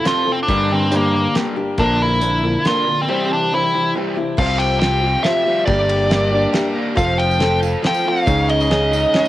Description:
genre	folk rock and heartland rock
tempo	139 BPM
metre	3/4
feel	straight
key	unclear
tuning	A4 = 442 Hz
part	nasal lead guitar with a parked wah	melody	0.0-9.3 s	Bb3 to G5	-18 LUFS	equal	overdrive, cassette tape, analog delay
part	picked steel-string acoustic guitar	accompaniment	0.0-9.3 s	G2 to Bb4	-24 LUFS	left 4 dB	cassette tape
part	warm upright piano	accompaniment	0.0-9.3 s	D4 to E5	-28 LUFS	right 4 dB	cassette tape
part	overdriven semi-hollow guitar	riff	0.0-9.3 s	F2 to A4	-24 LUFS	right 1 dB	spring reverb, cassette tape
part	damped 70s drum kit	drums	0.1-9.2 s	crash cymbal, hi-hat, kick drum, ride cymbal, snare drum	-23 LUFS	equal	cassette tape
part	modern bright picked electric bass	bass	0.5-9.0 s	F1 to G2	-20 LUFS	equal	none
part	tonewheel organ	sustained chords	4.4-9.3 s	Ab3 to C5	-28 LUFS	right 1 dB	none
part	tambourine	percussion	7.0-9.3 s	none	-38 LUFS	right 7 dB	none
room	moderate studio reverb, RT60 0.6 s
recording	home recording on cassette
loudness	-15 LUFS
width	side -14 dB against mid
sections	0.0-4.4 A section; 4.4-9.3 B section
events	none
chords	0.5 Gm; 1.8 Bb; 3.1 C; 4.4 Csus4; 5.7 Gm; 7.0 F; 8.3 Dbsus2

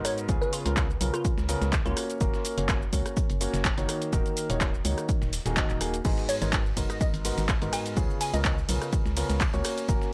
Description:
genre	piano house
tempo	125 BPM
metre	4/4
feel	swing 54% on 16ths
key	unclear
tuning	A4 = 440 Hz
part	glassy wavetable pluck	melody	0.0-2.0, 6.3-8.7 s	E#4 to G#5	-36 LUFS	equal	chorus, analog delay
part	warm upright piano	riff	0.0-10.1 s	G#2 to D#5	-34 LUFS	equal	sidechain pumping, analog delay
part	organ-like FM bass	bass	0.0-10.0 s	D#1 to C#2	-32 LUFS	equal	sidechain pumping
part	dusty soul sampler-style drum kit	drums	0.0-10.1 s	hi-hat, shaker, snare drum	-44 LUFS	equal	none
part	punchy analog drum machine	drums	0.0-10.1 s	crash cymbal, handclaps, hi-hat, ride cymbal, rim click, shaker	-35 LUFS	equal	none
part	electronic kick drum	drums	0.3-10.0 s	none	-30 LUFS	equal	none
part	tambourine	percussion	6.0-10.1 s	none	-50 LUFS	equal	none
room	little or no reverb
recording	dry, gritty hardware recording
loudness	-27 LUFS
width	mono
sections	0.0-10.1 A section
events	none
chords	0.3 C#7; 2.0 F#; 3.9 D#m; 6.0 G#m7; 8.0 C#7

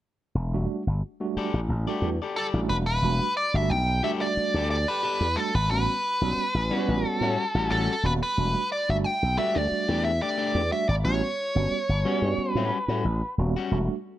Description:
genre	funk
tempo	90 BPM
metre	4/4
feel	straight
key	E dorian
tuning	A4 = 441 Hz
part	slap bass with an envelope filter	bass	0.3-13.9 s	D#1 to A2	-26 LUFS	equal	none
part	tine electric piano	stabs	0.5-13.9 s	G3 to F#4	-31 LUFS	right 4 dB	medium stereo tremolo, plate reverb
part	electric guitar at the edge of break-up	accompaniment	1.4-13.8 s	G3 to D5	-32 LUFS	left 6 dB	plate reverb
part	nasal lead guitar with a parked wah	melody	2.4-13.3 s	A4 to G5	-26 LUFS	equal	overdrive, plate reverb
room	light reverb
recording	none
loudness	-23 LUFS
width	side -13 dB against mid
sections	0.4-3.0 A section; 3.0-14.2 B section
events	none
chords	0.4 Em11; 3.0 Em11 (rootless); 5.7 A13; 8.4 Em11; 11.1 A13

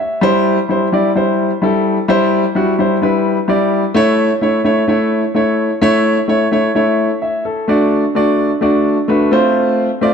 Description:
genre	soul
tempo	129 BPM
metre	4/4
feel	straight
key	unclear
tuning	A4 = 440 Hz
part	warm concert grand piano	solo	0.0-10.1 s	G3 to E5	-12 LUFS	equal	analog delay
room	moderate plate reverb, RT60 2.5 s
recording	dark, warm production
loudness	-12 LUFS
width	side -6 dB against mid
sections	0.2-7.7 A section; 7.7-10.1 B section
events	none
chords	0.2 C; 4.0 A; 7.7 D; 9.3 F

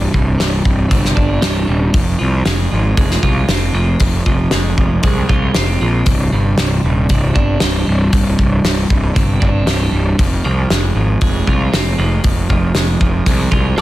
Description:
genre	quiet-loud alternative rock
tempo	117 BPM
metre	4/4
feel	straight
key	unclear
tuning	A4 = 440 Hz
part	twelve-string electric guitar	arpeggios	0.0-13.8 s	C2 to F4	-19 LUFS	right 2 dB	phaser
part	fuzz picked electric bass	bass	0.0-13.8 s	C1 to C2	-16 LUFS	equal	overdrive
part	loose indie drum kit	drums	0.1-13.8 s	hi-hat, kick drum, snare drum	-16 LUFS	equal	none
room	light reverb, studio reverb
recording	dense, heavily limited modern master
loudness	-12 LUFS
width	side -16 dB against mid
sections	0.0-13.8 A section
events	none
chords	0.0 Csus2; 1.9 Fm; 6.1 Csus2; 10.2 Fm

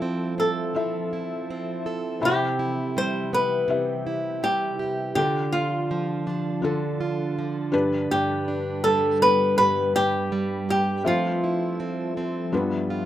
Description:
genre	acoustic pop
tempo	82 BPM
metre	4/4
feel	swing 55% on 16ths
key	C major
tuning	A4 = 438 Hz
part	flamenco guitar	melody	0.0-13.1 s	F4 to C5	-23 LUFS	equal	none
part	felt-muted upright piano	accompaniment	0.0-13.1 s	G3 to B5	-30 LUFS	left 3 dB	none
part	fingerpicked plugged-in steel-string acoustic guitar	accompaniment	0.0-13.1 s	G2 to A4	-28 LUFS	right 3 dB	none
part	glassy FM pad	sustained chords	0.0-13.1 s	C3 to E5	-34 LUFS	left 1 dB	ensemble chorus, built-in reverb
room	light reverb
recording	rough home demo mix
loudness	-22 LUFS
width	side -12 dB against mid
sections	0.0-13.1 A section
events	none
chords	0.0 Fmaj7; 2.2 Cmaj7; 5.2 Dm; 7.7 G; 11.0 Fmaj7; 12.5 G7

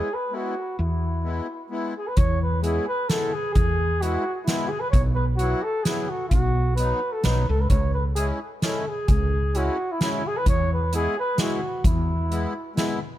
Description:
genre	alpine folk, alpine dance band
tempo	130 BPM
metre	3/4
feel	swing 54% on 8ths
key	E major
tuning	A4 = 440 Hz
part	mellow flugelhorn	melody	0.0-12.8 s	E4 to C#5	-27 LUFS	equal	tape echo
part	accordion	accompaniment	0.0-13.0 s	F#3 to E4	-30 LUFS	left 2 dB	light tremolo tuning
part	woody fretless electric bass	bass	0.8-12.4 s	B1 to E2	-23 LUFS	equal	ensemble chorus
part	soft-mallet drum kit	drums	2.2-12.9 s	hi-hat, kick drum, snare drum	-24 LUFS	equal	none
room	little or no reverb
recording	none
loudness	-21 LUFS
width	side -13 dB against mid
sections	0.0-2.2 A section; 2.2-13.2 A section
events	none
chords	0.0 E; 4.9 Bsus4; 6.3 B; 7.7 C#m; 10.5 E

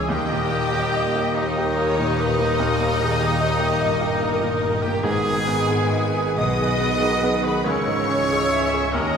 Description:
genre	classical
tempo	43-49 BPM (dotted quarters)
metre	12/8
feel	rubato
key	unclear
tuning	A4 = 441 Hz
part	bright baby grand piano	melody	0.0-9.2 s	C#2 to E5	-25 LUFS	left 1 dB	none
part	clear studio violin section	melody	0.0-9.2 s	D#5 to D#6	-31 LUFS	left 3 dB	none
part	clear oboe	second line	0.0-9.2 s	D#4 to D#5	-30 LUFS	equal	none
part	dark clarinet	second line	0.0-9.2 s	G4 to G#4	-34 LUFS	equal	none
part	mellow flute section	second line	0.0-9.2 s	D#6 to E6	-31 LUFS	equal	none
part	rich studio violin section	second line	0.0-9.2 s	D#4 to D#5	-33 LUFS	equal	none
part	clear bassoon	accompaniment	0.0-9.2 s	A#3 to C#4	-31 LUFS	right 2 dB	none
part	rich studio viola section	accompaniment	0.0-9.2 s	G4 to E5	-30 LUFS	equal	none
part	mellow trombone section	sustained chords	0.0-9.2 s	D#3 to G#3	-33 LUFS	right 2 dB	none
part	warm French horn section	sustained chords	0.0-9.2 s	A#3 to A#4	-30 LUFS	left 3 dB	none
part	bright trumpet	stabs	0.0-9.2 s	D#4 to D#5	-28 LUFS	right 1 dB	none
part	mellow tuba	bass	0.0-9.2 s	G1 to D#2	-30 LUFS	right 1 dB	none
part	rich studio cello section	bass	0.0-9.2 s	D#2 to D#3	-30 LUFS	right 1 dB	none
part	rich studio double bass section	bass	0.0-9.2 s	G1 to D#2	-31 LUFS	right 2 dB	none
part	timpani	percussion	0.1-1.3 s	D#3	-35 LUFS	equal	none
room	wet scoring stage reverb, RT60 2.0 s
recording	minimal, uncompressed stereo recording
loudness	-18 LUFS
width	side -6 dB against mid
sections	0.0-9.2 A section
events	none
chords	0.1 D#; 5.0 G#m; 7.7 C#m

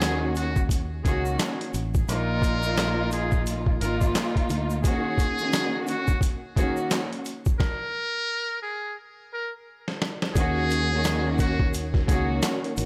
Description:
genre	hip hop, boom-bap hip-hop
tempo	87 BPM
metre	4/4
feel	swing 60% on 16ths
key	Eb minor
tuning	A4 = 440 Hz
part	trumpet with metal mute	melody	0.0-12.3 s	Gb4 to Bb4	-33 LUFS	equal	high-pass filter, low-pass filter, delay
part	dark chamber string section	accompaniment	0.0-12.7 s	Bb2 to Gb4	-31 LUFS	equal	high-pass filter, low-pass filter
part	fingered electric bass	bass	0.0-4.8, 10.4-12.9 s	Ab1 to Eb2	-31 LUFS	equal	none
part	boom bap sampler-style drum kit	drums	0.0-12.9 s	handclaps, hi-hat, kick drum, snare drum	-28 LUFS	equal	none
part	tube shaker	percussion	0.0-12.9 s	none	-45 LUFS	equal	none
part	mellow tonewheel organ	sustained chords	10.3-12.9 s	Eb3 to Gb4	-37 LUFS	equal	chorus vibrato, slow rotary speaker, high-pass filter, low-pass filter
room	light reverb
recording	none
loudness	-25 LUFS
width	mono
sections	0.0-10.4 A section; 10.4-12.9 B section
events	stop 7.6-10.4; drum fill 9.7-10.4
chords	0.0 Ebm7; 2.1 Bbsus4; 4.8 Ebm7; 7.6 N.C.; 10.4 Ebm7

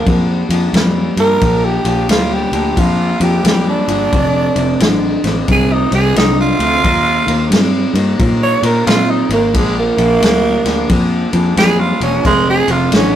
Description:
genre	electric blues shuffle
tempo	89 BPM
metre	4/4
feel	swing 64% on 8ths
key	Bb mixolydian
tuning	A4 = 440 Hz
part	growling tenor saxophone	second line	0.0-13.2 s	Ab3 to Db5	-15 LUFS	right 3 dB	none
part	electric guitar through a small old amp	riff	0.0-13.2 s	F2 to C4	-18 LUFS	left 1 dB	none
part	fingered electric bass	bass	0.0-13.2 s	E1 to Bb2	-17 LUFS	left 1 dB	none
part	vintage drum kit	drums	0.1-13.1 s	kick drum, ride cymbal, snare drum	-17 LUFS	left 1 dB	none
room	moderate studio reverb, RT60 0.5 s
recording	rough rehearsal-room recording, warm saturation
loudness	-11 LUFS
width	side -10 dB against mid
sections	0.0-13.2 A section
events	tenor saxophone solo 0.0-13.2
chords	0.0 Bb; 4.1 F; 6.8 Ebadd9; 9.5 Bb; 12.2 F

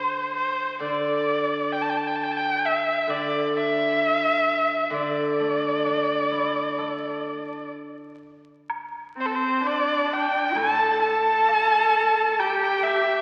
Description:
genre	chinese traditional, Chinese chamber ensemble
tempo	65 BPM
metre	4/4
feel	rubato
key	D shang mode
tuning	A4 = 441 Hz
part	clear erhu	melody	0.0-13.2 s	A4 to A5	-25 LUFS	equal	none
part	steel-string zither	accompaniment	0.0-13.2 s	A2 to A4	-31 LUFS	equal	none
part	woodblock	percussion	8.7-12.6 s	none	-38 LUFS	equal	none
part	bright horsehead fiddle	second line	9.2-13.2 s	C4 to A4	-28 LUFS	equal	none
room	wet concert hall reverb, RT60 2.3 s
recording	very old 78 rpm record, vinyl crackle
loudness	-23 LUFS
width	mono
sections	0.0-8.7 A section; 8.7-13.2 B section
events	none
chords	none

